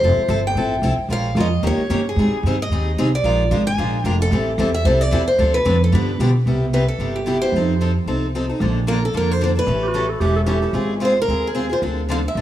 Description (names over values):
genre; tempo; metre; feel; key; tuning
acoustic string swing (jazz manouche); 224 BPM; 4/4; swing 56% on 8ths; unclear; A4 = 439 Hz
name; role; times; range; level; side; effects
picked steel-string acoustic guitar; melody; 0.0-12.4 s; G4 to Ab5; -22 LUFS; equal; none
picked steel-string acoustic guitar; accompaniment; 0.0-12.4 s; C3 to Bb4; -22 LUFS; left 1 dB; none
upright bass; bass; 0.0-12.4 s; E1 to B2; -20 LUFS; right 1 dB; none
breathy clarinet; second line; 9.8-10.9 s; F#4 to A4; -26 LUFS; right 4 dB; none
room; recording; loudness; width
light reverb, studio reverb; rough home demo mix, small room ambience; -16 LUFS; side -12 dB against mid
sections
0.0-6.5 A section; 6.5-12.4 B section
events
none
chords
0.0 Fmaj9; 1.1 Bbm7; 1.6 Eb7; 2.2 Abmaj7; 3.2 Bb7; 4.3 Am7; 5.4 Dm7; 5.9 G7; 6.5 Cmaj7; 7.5 F7; 8.6 Bbmaj7; 9.7 A9; 10.8 Ab6; 11.8 Dm7